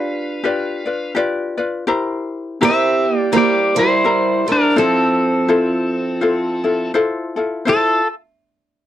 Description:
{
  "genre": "Hawaiian",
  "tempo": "83 BPM",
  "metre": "4/4",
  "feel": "swing 59% on 8ths",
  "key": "F major",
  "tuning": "A4 = 440 Hz",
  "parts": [
    { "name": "pedal steel guitar", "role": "melody", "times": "0.0-8.1 s", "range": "C4 to F5", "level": "-16 LUFS", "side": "equal", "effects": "slapback echo" },
    { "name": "picked steel-string acoustic guitar", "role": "second line", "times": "0.0-8.1 s", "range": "F3 to F4", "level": "-23 LUFS", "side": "right 6 dB", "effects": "none" },
    { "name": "ukulele", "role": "accompaniment", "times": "0.0-8.0 s", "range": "E4 to D5", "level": "-19 LUFS", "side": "left 3 dB", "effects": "none" }
  ],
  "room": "light reverb",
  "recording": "dry, close 1970s-style studio recording",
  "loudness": "-15 LUFS",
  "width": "side -12 dB against mid",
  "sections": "0.0-7.7 A section; 7.7-8.9 B section",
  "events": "none",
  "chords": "0.0 G7; 1.9 C7; 4.8 Fmaj7",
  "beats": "0.44 1.16 | 1.88 2.60 3.33 4.05 | 4.77 5.50 6.22 6.94 | 7.66"
}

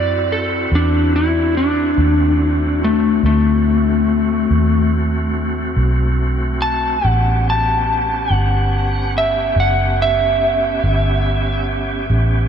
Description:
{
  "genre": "slow blues",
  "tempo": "47 BPM (dotted quarters)",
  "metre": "12/8",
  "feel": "straight",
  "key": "unclear",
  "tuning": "A4 = 440 Hz",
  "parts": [
    { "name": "electric slide guitar", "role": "melody", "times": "0.0-11.7 s", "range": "A3 to A5", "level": "-17 LUFS", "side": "left 2 dB", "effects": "ping-pong delay" },
    { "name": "bright tonewheel organ", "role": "sustained chords", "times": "0.0-12.5 s", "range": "A3 to G4", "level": "-24 LUFS", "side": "right 2 dB", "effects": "slow rotary speaker" },
    { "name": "vintage muted fingered electric bass", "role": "bass", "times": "0.0-12.5 s", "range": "F#1 to F#2", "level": "-18 LUFS", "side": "equal", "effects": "none" }
  ],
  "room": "moderate huge ambient reverb, RT60 9.0 s",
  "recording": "dreamy mix soaked in reverb",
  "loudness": "-14 LUFS",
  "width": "side -8 dB against mid",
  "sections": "0.0-12.5 A section",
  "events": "electric slide guitar solo 0.0-12.5",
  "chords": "0.0 D7; 2.0 D#dim7; 7.0 A7",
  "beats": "0.70 | 1.97 3.23 4.50 5.77 | 7.04 8.30 9.57 10.84 | 12.11"
}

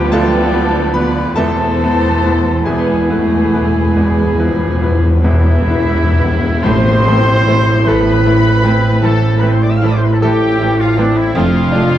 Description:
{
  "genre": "classical, romantic movement for piano and orchestra",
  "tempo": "40-53 BPM (dotted quarters)",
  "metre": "12/8",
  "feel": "rubato",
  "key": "A minor",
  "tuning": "A4 = 441 Hz",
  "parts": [
    { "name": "bright baby grand piano", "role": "melody", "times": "0.0-12.0 s", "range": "E1 to B5", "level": "-18 LUFS", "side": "left 1 dB", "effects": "none" },
    { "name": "muted studio violin section", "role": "melody", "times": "0.0-12.0 s", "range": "E4 to F6", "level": "-26 LUFS", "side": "left 4 dB", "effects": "none" },
    { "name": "flute section", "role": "second line", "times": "0.0-12.0 s", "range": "D4 to B5", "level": "-23 LUFS", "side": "left 1 dB", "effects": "none" },
    { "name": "muted studio violin section", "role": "second line", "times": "0.0-11.8 s", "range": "D4 to D5", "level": "-27 LUFS", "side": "left 3 dB", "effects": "none" },
    { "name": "warm oboe", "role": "second line", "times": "0.0-12.0 s", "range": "D4 to F5", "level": "-24 LUFS", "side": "right 1 dB", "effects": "none" },
    { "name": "muted studio viola section", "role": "accompaniment", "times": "0.0-11.8 s", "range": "E3 to B3", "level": "-21 LUFS", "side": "right 1 dB", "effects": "none" },
    { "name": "dark French horn section", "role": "sustained chords", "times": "0.0-12.0 s", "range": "A3 to F4", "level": "-19 LUFS", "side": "left 2 dB", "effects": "none" },
    { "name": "muted studio cello section", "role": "bass", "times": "0.0-12.0 s", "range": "F2 to B3", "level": "-22 LUFS", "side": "right 2 dB", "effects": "none" },
    { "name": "muted studio double bass section", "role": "bass", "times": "0.0-12.0 s", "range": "F1 to E2", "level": "-17 LUFS", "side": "right 2 dB", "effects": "none" },
    { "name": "cymbal swell and tam-tam", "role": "percussion", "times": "1.4-9.8 s", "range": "none", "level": "-26 LUFS", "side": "left 2 dB", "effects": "none" },
    { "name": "timpani", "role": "percussion", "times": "1.4-7.8 s", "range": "E2 to A2", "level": "-17 LUFS", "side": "left 1 dB", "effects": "none" },
    { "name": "warm trumpet", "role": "stabs", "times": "5.2-12.0 s", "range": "D4 to F5", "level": "-22 LUFS", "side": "right 2 dB", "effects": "none" }
  ],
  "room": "wet recital hall reverb, RT60 1.6 s",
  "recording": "dark, warm production, nothing above 10.4 kHz",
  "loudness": "-10 LUFS",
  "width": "side -12 dB against mid",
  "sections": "0.0-6.6 A section; 6.6-12.0 B section",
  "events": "timpani fill 1.4-6.6; band accent 6.6-7.5",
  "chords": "0.0 Bm7b5/D; 1.4 E; 6.6 Am; 11.3 Dm/F",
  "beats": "0.13 | 1.37 2.67 3.97 5.24 | 6.63 7.87 9.03 10.22 | 11.35"
}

